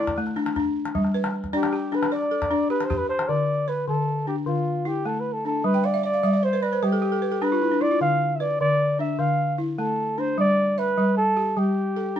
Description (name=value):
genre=west african traditional, West African string and xylophone music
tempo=102 BPM (dotted quarters)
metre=12/8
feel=straight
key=D dorian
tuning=A4 = 439 Hz
part: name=mellow flugelhorn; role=melody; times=0.0-12.2 s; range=F4 to F5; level=-24 LUFS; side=equal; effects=none
part: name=balafon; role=arpeggios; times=0.0-12.2 s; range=D3 to G5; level=-24 LUFS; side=left 1 dB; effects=none
part: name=calabash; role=percussion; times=0.1-3.3 s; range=none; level=-31 LUFS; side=left 3 dB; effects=none
room=light reverb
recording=minimal, uncompressed stereo recording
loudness=-21 LUFS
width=side -10 dB against mid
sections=0.0-3.3 A section; 3.3-12.2 B section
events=balafon fill 5.7-8.0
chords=0.0 D5; 0.9 G; 3.3 D5; 5.6 G; 8.0 Dm; 10.4 G